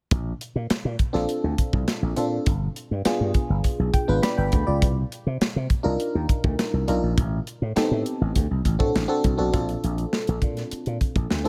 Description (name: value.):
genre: polished 1980s jazz-funk pop.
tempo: 102 BPM.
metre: 4/4.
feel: straight.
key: Bb major.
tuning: A4 = 438 Hz.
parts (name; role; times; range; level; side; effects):
slap bass with an envelope filter; bass; 0.1-11.5 s; G1 to C3; -27 LUFS; equal; none.
crisp fusion drum kit; drums; 0.1-11.5 s; hi-hat, kick drum, snare drum; -27 LUFS; equal; none.
FM electric piano; accompaniment; 1.1-11.5 s; B3 to B5; -29 LUFS; equal; subtle chorus.
room: studio reverb.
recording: none.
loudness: -24 LUFS.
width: mono.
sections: 0.1-9.5 A section; 9.5-11.5 B section.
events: FM electric piano fill 3.6-4.8.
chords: 0.1 Bbmaj9; 2.5 G7b9; 4.8 Cm11; 7.2 Am7b5; 8.4 D7; 9.5 Bbmaj9.